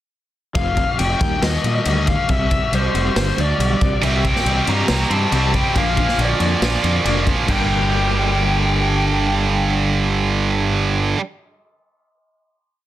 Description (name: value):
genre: quiet-loud alternative rock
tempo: 139 BPM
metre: 4/4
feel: straight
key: G minor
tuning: A4 = 440 Hz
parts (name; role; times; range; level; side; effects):
- electric guitar through a small old amp; arpeggios; 0.5-11.2 s; G2 to A4; -27 LUFS; left 1 dB; tremolo
- bluesy overdriven lead guitar; melody; 0.6-11.1 s; C5 to Bb5; -23 LUFS; left 2 dB; distortion
- fuzz fingered electric bass; bass; 0.6-11.1 s; F1 to Bb2; -21 LUFS; equal; overdrive
- raw garage drum kit; drums; 0.6-7.6 s; crash cymbal, kick drum, snare drum; -22 LUFS; left 1 dB; none
- heavy high-gain guitar; riff; 4.0-11.2 s; G2 to C4; -20 LUFS; right 5 dB; distortion
room: light reverb, small room ambience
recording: dense, heavily limited modern master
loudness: -16 LUFS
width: side -13 dB against mid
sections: 0.5-7.5 pre-chorus; 7.5-10.9 final chord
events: none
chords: 0.5 F5; 1.2 Eb; 2.3 C; 3.2 G5; 3.8 C; 5.8 Bb; 7.5 Gmadd9